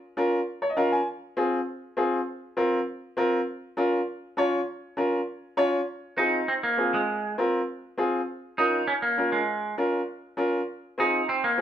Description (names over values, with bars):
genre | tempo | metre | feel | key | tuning
latin | 200 BPM | 4/4 | straight | Bb minor | A4 = 444 Hz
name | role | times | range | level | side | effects
clear upright piano | accompaniment | 0.2-11.6 s | C4 to Ab5 | -25 LUFS | left 1 dB | none
clean electric guitar | melody | 6.2-11.6 s | Ab3 to Eb4 | -24 LUFS | right 2 dB | spring reverb
room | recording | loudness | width
moderate studio reverb, RT60 0.8 s | band playing live in one room | -24 LUFS | side -10 dB against mid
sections
0.0-5.9 A section; 5.9-11.6 B section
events
upright piano fill 0.5-1.1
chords
0.0 Bbm; 1.1 Fm; 3.5 Bbm; 5.9 Fm; 8.3 Bbm; 10.7 Fm7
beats
0.17 0.47 0.77 | 1.07 1.37 1.67 1.97 | 2.27 2.57 2.87 3.17 | 3.47 3.77 4.07 4.38 | 4.67 4.98 5.28 5.58 | 5.88 6.18 6.48 6.78 | 7.08 7.38 7.68 7.98 | 8.28 8.58 8.88 9.18 | 9.48 9.78 10.08 10.38 | 10.69 10.98 11.29 11.59